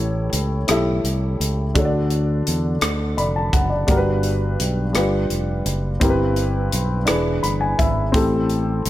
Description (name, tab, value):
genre	slow gospel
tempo	56 BPM (dotted quarters)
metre	6/8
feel	straight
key	G major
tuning	A4 = 441 Hz
part	dark upright piano	accompaniment	0.0-8.9 s	G2 to B5	-21 LUFS	left 1 dB	none
part	fingered electric bass	bass	0.0-8.9 s	E1 to E2	-22 LUFS	equal	none
part	crisp fusion drum kit	drums	0.3-8.9 s	hi-hat, kick drum, rim click	-23 LUFS	equal	none
room	light reverb, small room ambience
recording	none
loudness	-18 LUFS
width	side -14 dB against mid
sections	0.0-8.9 A section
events	upright piano fill 2.8-3.9, 7.1-8.1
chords	0.0 A7; 1.8 D; 3.9 Gmaj7; 5.0 G7; 6.0 Cmaj7/G; 7.1 E7; 8.1 Am7